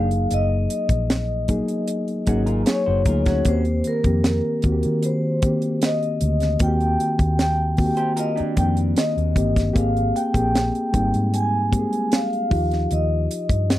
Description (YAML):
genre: lush 1970s-style soul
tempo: 76 BPM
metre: 4/4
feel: straight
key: Eb major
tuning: A4 = 440 Hz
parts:
  - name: vibraphone with soft mallets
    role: melody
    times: 0.0-13.8 s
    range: Bb4 to Ab5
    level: -25 LUFS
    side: left 1 dB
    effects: none
  - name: reed electric piano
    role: accompaniment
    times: 0.0-13.8 s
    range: Eb3 to Ab4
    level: -23 LUFS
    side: left 1 dB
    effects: none
  - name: electric guitar through a small old amp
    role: riff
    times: 0.0-9.5 s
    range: Db4 to Db5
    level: -31 LUFS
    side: right 5 dB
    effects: none
  - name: vintage muted fingered electric bass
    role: bass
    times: 0.0-13.8 s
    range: Gb1 to Eb3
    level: -22 LUFS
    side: equal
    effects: none
  - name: tight funk drum kit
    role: drums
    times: 0.1-13.8 s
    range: hi-hat, kick drum, snare drum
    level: -22 LUFS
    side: equal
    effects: none
room: light reverb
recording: dry, close 1970s-style studio recording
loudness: -18 LUFS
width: side -14 dB against mid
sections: 0.0-13.8 A section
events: none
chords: 0.0 Gb69; 3.5 Eb6; 9.8 Abmaj9; 12.5 Ebadd9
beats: | 0.30 1.09 1.88 2.67 | 3.46 4.24 5.03 5.82 | 6.61 7.39 8.18 8.97 | 9.76 10.54 11.33 12.12 | 12.91 13.70